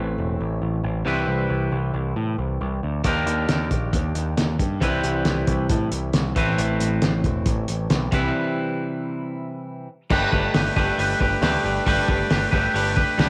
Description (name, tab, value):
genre	indie rock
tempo	136 BPM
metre	4/4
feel	straight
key	G major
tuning	A4 = 440 Hz
part	twangy electric guitar	riff	0.0-13.3 s	A2 to B4	-26 LUFS	equal	cassette tape
part	growling picked electric bass	bass	0.0-13.3 s	E1 to A2	-28 LUFS	equal	overdrive
part	cloth-damped thuddy drum kit	drums	3.0-13.3 s	crash cymbal, hi-hat, kick drum, snare drum	-26 LUFS	equal	cassette tape
room	light reverb, small room ambience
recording	home recording on cassette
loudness	-23 LUFS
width	mono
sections	0.0-10.1 A section; 10.1-13.3 B section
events	break 8.3-10.1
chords	0.0 Amadd9; 1.1 Cmaj7; 3.1 Ebmaj7; 4.8 Cmaj7; 6.4 Amadd9; 8.1 Cmaj7; 10.1 Gadd9